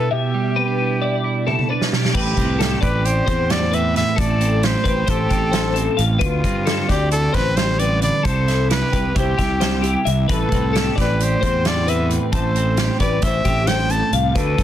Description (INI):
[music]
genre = math rock and midwest emo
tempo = 265 BPM (eighths)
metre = 9/8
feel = straight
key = A minor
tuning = A4 = 440 Hz
[part]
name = clear trumpet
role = melody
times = 0.0-14.6 s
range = F4 to A5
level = -23 LUFS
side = equal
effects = digital delay
[part]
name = twelve-string electric guitar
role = accompaniment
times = 0.0-14.6 s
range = A2 to C5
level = -23 LUFS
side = right 5 dB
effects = lush chorus
[part]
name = twelve-string electric guitar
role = arpeggios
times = 0.0-14.6 s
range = G4 to F5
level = -24 LUFS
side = left 8 dB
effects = ensemble chorus
[part]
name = loose indie drum kit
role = drums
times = 1.5-14.6 s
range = crash cymbal, hi-hat, kick drum, snare drum, toms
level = -22 LUFS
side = equal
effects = none
[part]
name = fuzz fingered electric bass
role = bass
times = 2.1-14.6 s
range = A1 to G2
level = -21 LUFS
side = equal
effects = overdrive
[sound]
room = light reverb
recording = dense, heavily limited modern master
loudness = -16 LUFS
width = side -11 dB against mid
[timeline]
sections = 0.0-2.1 A section; 2.1-14.6 B section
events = drum fill 1.5-2.1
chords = 0.0 Em7/B; 2.1 Am7; 6.2 D7sus4; 8.3 Cmaj7; 10.3 Am7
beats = | 0.11 0.33 0.56 0.79 1.01 1.24 1.47 1.69 1.92 | 2.14 2.37 2.60 2.82 3.05 3.27 3.50 3.73 3.95 | 4.18 4.41 4.63 4.86 5.08 5.31 5.54 5.76 5.99 | 6.22 6.44 6.67 6.90 7.12 7.35 7.58 7.80 8.03 | 8.26 8.48 8.71 8.94 9.16 9.39 9.61 9.84 10.07 | 10.29 10.52 10.74 10.97 11.20 11.42 11.65 11.88 12.10 | 12.33 12.55 12.78 13.00 13.23 13.45 13.68 13.90 14.13 | 14.35 14.58